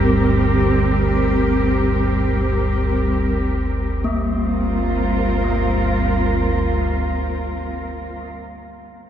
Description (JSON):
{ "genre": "dark ambient drone", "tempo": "free time", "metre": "none", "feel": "none", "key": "unclear", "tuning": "A4 = 439 Hz", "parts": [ { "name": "muted studio cello section", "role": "sustained chords", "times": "0.0-8.4 s", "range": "G3 to Bb4", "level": "-20 LUFS", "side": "right 1 dB", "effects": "none" }, { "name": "deep rumbling drone", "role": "drone", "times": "0.0-8.0 s", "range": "G1 to D2", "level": "-20 LUFS", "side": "equal", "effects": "built-in reverb" }, { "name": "gamelan-type bronze metallophone", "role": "arpeggios", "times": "4.0-8.0 s", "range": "Bb3", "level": "-27 LUFS", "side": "left 3 dB", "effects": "diffuse ambient delay" } ], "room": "wet cathedral reverb, RT60 5.6 s", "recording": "in a vast, echoing space", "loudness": "-17 LUFS", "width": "side -10 dB against mid", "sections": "0.0-4.0 A section; 4.0-7.7 B section", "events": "none", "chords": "0.0 Gm" }